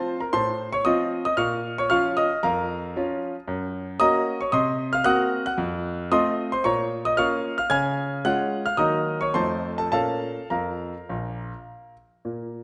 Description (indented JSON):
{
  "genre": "classical-period piano sonatina",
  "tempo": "113 BPM",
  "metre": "4/4",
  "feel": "rubato",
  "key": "Bb minor",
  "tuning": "A4 = 442 Hz",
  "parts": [
    { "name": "clear concert grand piano", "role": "solo", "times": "0.0-12.6 s", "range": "Bb1 to Ab6", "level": "-25 LUFS", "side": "equal", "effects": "none" }
  ],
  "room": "moderate recital hall reverb, RT60 1.3 s",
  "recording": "nothing above 10.7 kHz",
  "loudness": "-24 LUFS",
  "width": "mono",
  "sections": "0.0-12.2 A section",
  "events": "none",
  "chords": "0.0 F/A; 1.4 Bbm; 3.5 Gb; 4.5 Cm7b5; 5.6 F7; 6.7 Bbm; 7.7 Db; 8.8 Ebm; 9.3 F7; 9.9 Bbm"
}